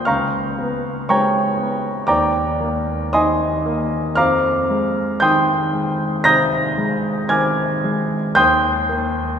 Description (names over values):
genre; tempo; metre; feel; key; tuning
classical, impressionist solo piano; 58 BPM; 4/4; rubato; unclear; A4 = 440 Hz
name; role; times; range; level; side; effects
warm grand piano; solo; 0.0-9.4 s; Db2 to Bb6; -16 LUFS; equal; none
room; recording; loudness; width
wet cathedral reverb, RT60 4.4 s; recorded in a church or concert hall; -16 LUFS; side -8 dB against mid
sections
0.0-9.4 A section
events
none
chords
0.1 Db7; 2.1 Ebmaj7; 4.2 Fm9; 8.4 Eb